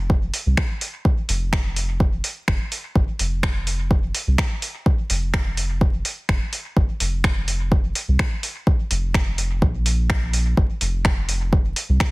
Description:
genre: dub techno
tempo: 126 BPM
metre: 4/4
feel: swing 54% on 16ths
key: unclear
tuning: A4 = 441 Hz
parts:
  - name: soft dub sub bass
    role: bass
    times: 0.0-12.0 s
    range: F1 to C2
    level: -22 LUFS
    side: equal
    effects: sidechain pumping
  - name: electronic kick drum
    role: drums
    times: 0.1-12.1 s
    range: none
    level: -19 LUFS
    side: equal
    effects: none
  - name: soft vintage rhythm box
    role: drums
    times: 0.3-12.1 s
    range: finger snaps, hi-hat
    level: -26 LUFS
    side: equal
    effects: overdrive, soft clipping on snare
room: digital ambience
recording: dense, heavily limited modern master, vinyl crackle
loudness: -19 LUFS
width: side -23 dB against mid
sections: 0.0-12.1 A section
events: none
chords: none

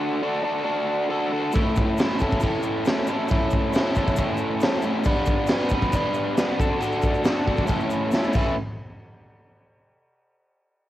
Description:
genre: garage rock duo or trio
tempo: 136 BPM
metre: 4/4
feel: straight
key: A mixolydian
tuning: A4 = 440 Hz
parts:
  - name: crunchy overdriven guitar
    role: riff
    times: 0.0-8.5 s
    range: A2 to B4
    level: -23 LUFS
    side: equal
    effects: cassette tape
  - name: tube shaker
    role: percussion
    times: 1.5-8.5 s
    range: none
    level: -46 LUFS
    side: left 6 dB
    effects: none
  - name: raw garage drum kit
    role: drums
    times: 1.6-8.5 s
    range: crash cymbal, kick drum, snare drum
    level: -23 LUFS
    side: equal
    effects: cassette tape
room: small room ambience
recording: home recording on cassette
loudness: -20 LUFS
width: side -14 dB against mid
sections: 0.0-8.6 A section; 8.6-10.3 B section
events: drum fill 8.1-8.6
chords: 0.0 D; 1.5 A; 5.1 G; 6.6 D; 7.7 A; 8.6 N.C.

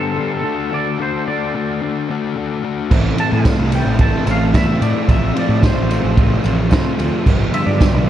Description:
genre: indie rock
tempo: 110 BPM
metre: 4/4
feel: straight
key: A minor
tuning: A4 = 440 Hz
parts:
  - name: twangy electric guitar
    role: melody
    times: 0.0-8.1 s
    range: A4 to A5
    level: -24 LUFS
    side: right 1 dB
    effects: analog chorus, ping-pong delay
  - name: thick fuzz guitar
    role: riff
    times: 0.0-8.1 s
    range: G2 to G4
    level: -21 LUFS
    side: left 7 dB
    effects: distortion
  - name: crunchy overdriven guitar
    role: riff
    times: 2.9-8.1 s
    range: G2 to F4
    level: -21 LUFS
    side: right 6 dB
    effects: analog chorus
  - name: fuzz picked electric bass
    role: bass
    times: 2.9-8.1 s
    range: G1 to A2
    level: -18 LUFS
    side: right 1 dB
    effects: overdrive
  - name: vintage drum kit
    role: drums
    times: 2.9-7.9 s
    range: crash cymbal, kick drum, ride cymbal, snare drum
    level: -17 LUFS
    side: right 1 dB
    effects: none
  - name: tambourine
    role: percussion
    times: 2.9-7.9 s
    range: none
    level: -45 LUFS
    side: right 5 dB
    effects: none
room: light reverb, small room reverb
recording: cassette tape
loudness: -14 LUFS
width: side -11 dB against mid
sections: 0.0-8.1 A section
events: none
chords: 0.5 D; 2.9 Am; 5.1 F/A; 7.3 G7

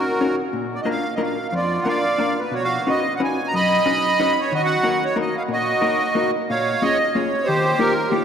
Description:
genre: musette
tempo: 183 BPM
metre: 3/4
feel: swing 54% on 8ths, rubato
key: Eb minor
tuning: A4 = 439 Hz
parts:
  - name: accordion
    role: melody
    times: 0.0-8.2 s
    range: F4 to B5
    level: -19 LUFS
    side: right 2 dB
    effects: light tremolo tuning
  - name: vintage hollow-body jazz guitar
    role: accompaniment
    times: 0.0-8.2 s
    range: F2 to B4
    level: -24 LUFS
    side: left 3 dB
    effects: none
room: wet cathedral reverb, RT60 5.3 s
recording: in a vast, echoing space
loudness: -18 LUFS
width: side -8 dB against mid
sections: 0.0-6.5 A section; 6.5-8.2 B section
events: none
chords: 0.0 Ebm7; 0.5 Bb; 2.5 Badd9; 4.5 Ebm; 6.5 Bbm7; 7.5 Ebadd9

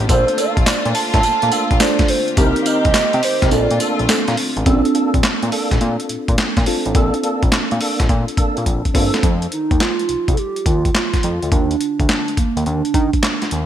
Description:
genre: R&B, new jack swing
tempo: 105 BPM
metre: 4/4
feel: swing 67% on 16ths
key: unclear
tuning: A4 = 439 Hz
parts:
  - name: mellow FM electric piano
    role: accompaniment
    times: 0.0-9.3 s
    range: C4 to C5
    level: -21 LUFS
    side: right 1 dB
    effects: chorus, phaser
  - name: warm studio string section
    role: sustained chords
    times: 0.0-4.7 s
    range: D3 to G4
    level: -25 LUFS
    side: left 1 dB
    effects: none
  - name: fat analog bass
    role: bass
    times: 0.0-13.7 s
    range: G1 to Eb3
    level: -20 LUFS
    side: equal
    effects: none
  - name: boom bap sampler-style drum kit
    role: drums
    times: 0.0-13.7 s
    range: handclaps, hi-hat, kick drum, snare drum, tambourine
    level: -18 LUFS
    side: equal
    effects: overdrive, gated reverb
  - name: hollow clarinet-like synth lead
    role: melody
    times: 0.1-4.1, 9.5-13.5 s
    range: Bb3 to A5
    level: -20 LUFS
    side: right 3 dB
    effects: chorus
  - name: tonewheel organ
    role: stabs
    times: 0.1-9.1 s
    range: Bb3 to Bb4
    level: -25 LUFS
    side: right 1 dB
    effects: overdrive, chorus vibrato, slow rotary speaker, ping-pong delay
room: moderate lush hall reverb, RT60 2.0 s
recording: bright 1980s-style digital production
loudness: -14 LUFS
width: side -10 dB against mid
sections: 0.0-4.7 A section; 4.7-9.2 B section; 9.2-13.7 C section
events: kick muted 3.5-4.7; drum fill 8.7-9.2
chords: 0.1 Bbmaj7; 2.4 Cm7; 3.5 Bbmaj7; 9.2 F5; 11.5 Bbadd11

